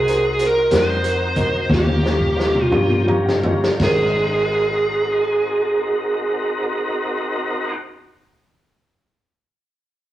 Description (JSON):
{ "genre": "slow blues", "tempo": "54-64 BPM (dotted quarters)", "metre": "12/8", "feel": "straight", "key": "Ab mixolydian", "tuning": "A4 = 441 Hz", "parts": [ { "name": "dark smooth lead guitar", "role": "melody", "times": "0.0-7.8 s", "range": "G4 to C5", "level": "-20 LUFS", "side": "right 2 dB", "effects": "overdrive" }, { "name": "tonewheel organ", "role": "sustained chords", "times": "0.0-7.7 s", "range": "C4 to Bb4", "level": "-27 LUFS", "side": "left 1 dB", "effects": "slow rotary speaker, chorus vibrato" }, { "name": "vintage muted picked electric bass", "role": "bass", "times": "0.0-7.7 s", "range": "Ab1 to G2", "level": "-23 LUFS", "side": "equal", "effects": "none" }, { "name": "clear concert grand piano", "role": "accompaniment", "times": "0.1-7.7 s", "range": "F4 to Bb5", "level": "-23 LUFS", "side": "right 1 dB", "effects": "none" }, { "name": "vintage drum kit", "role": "drums", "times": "0.1-4.0 s", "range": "crash cymbal, hi-hat, kick drum, snare drum, toms", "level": "-22 LUFS", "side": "left 1 dB", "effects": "none" } ], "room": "wet stone room reverb, RT60 1.0 s", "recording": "rough rehearsal-room recording, small room reverb", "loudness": "-16 LUFS", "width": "side -13 dB against mid", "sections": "0.0-3.8 A section; 3.8-8.2 B section", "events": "slowing down 0.0-3.8; drum fill 1.7-3.8; grand piano fill 2.7-3.8", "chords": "0.0 Ab7; 1.7 Eb7; 3.8 Ab7", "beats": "0.72 1.70 2.72 | 3.80 4.91 6.01 7.12" }